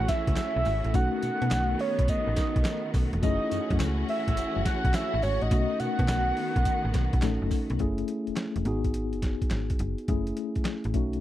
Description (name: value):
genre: R&B, new jack swing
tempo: 105 BPM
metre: 4/4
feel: swing 67% on 16ths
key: F# dorian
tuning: A4 = 442 Hz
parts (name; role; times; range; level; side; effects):
- soft octave-layered synth lead; melody; 0.0-7.5 s; C#5 to F#5; -30 LUFS; right 2 dB; chorus, slapback echo
- mellow tine electric piano; accompaniment; 0.0-11.2 s; A3 to A4; -32 LUFS; left 4 dB; medium stereo tremolo
- warm studio string section; sustained chords; 0.0-7.8 s; D#3 to F#4; -35 LUFS; right 1 dB; none
- slap-like FM bass; bass; 0.0-11.2 s; E1 to B2; -29 LUFS; equal; none
- boom bap sampler-style drum kit; drums; 0.1-11.2 s; handclaps, hi-hat, kick drum, snare drum, tambourine; -28 LUFS; equal; none
room: digital ambience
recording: dry, close 1970s-style studio recording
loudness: -25 LUFS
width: side -13 dB against mid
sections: 0.0-7.8 A section; 7.8-11.2 B section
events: none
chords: 0.0 F#m7; 0.9 B7; 3.2 F#m7; 5.5 B7; 7.8 F#m9; 8.7 G#m7; 10.1 F#m9